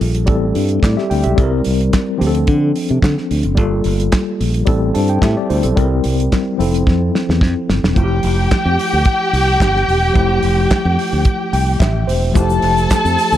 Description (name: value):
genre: disco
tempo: 109 BPM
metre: 4/4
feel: straight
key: unclear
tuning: A4 = 438 Hz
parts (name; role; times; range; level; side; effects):
- tine electric piano; accompaniment; 0.0-13.4 s; F3 to A5; -18 LUFS; left 2 dB; overdrive, fast stereo tremolo
- modern bright fingered electric bass; bass; 0.0-13.4 s; E1 to D3; -17 LUFS; equal; none
- damped 70s drum kit; drums; 0.0-13.3 s; handclaps, hi-hat, kick drum, snare drum; -18 LUFS; right 1 dB; none
- dark studio string section; second line; 8.0-13.4 s; G4 to A5; -17 LUFS; left 1 dB; none
- egg shaker; percussion; 12.4-13.4 s; none; -34 LUFS; right 12 dB; none
room: studio ambience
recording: dark, warm production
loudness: -13 LUFS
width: side -12 dB against mid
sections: 0.0-8.0 A section; 8.0-13.4 B section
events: drum fill 6.9-8.0; tine electric piano fill 11.3-12.4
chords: 0.3 Am7; 1.4 C7; 2.2 Dm7; 3.6 Gm9; 4.7 Am7; 5.8 C7; 6.6 Fmaj7; 8.0 Fmaj9